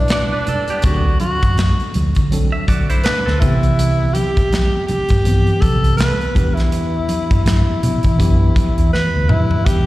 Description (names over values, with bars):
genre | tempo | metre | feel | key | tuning
lush 1970s-style soul | 82 BPM | 4/4 | swing 58% on 16ths | E minor | A4 = 440 Hz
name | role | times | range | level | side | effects
breathy tenor saxophone | melody | 0.0-9.9 s | D4 to B4 | -21 LUFS | equal | slapback echo
tine electric piano | accompaniment | 0.0-9.9 s | D3 to B4 | -24 LUFS | left 1 dB | overdrive, fast stereo tremolo, slapback echo
vintage muted fingered electric bass | bass | 0.0-9.9 s | B1 to E3 | -17 LUFS | equal | none
semi-hollow electric guitar | riff | 0.1-3.6 s | B3 to E5 | -26 LUFS | right 3 dB | slapback echo
modern studio drum kit | drums | 0.1-9.9 s | hi-hat, kick drum, snare drum, toms | -18 LUFS | equal | none
congas | percussion | 0.1-9.5 s | none | -25 LUFS | right 2 dB | none
room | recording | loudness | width
studio ambience | live gig heard through the venue's PA, recital hall reverb | -13 LUFS | side -17 dB against mid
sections
0.0-9.7 A section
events
drum fill 8.9-9.7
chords
0.0 Em7; 0.8 D7; 3.4 Cmaj7; 6.4 Em7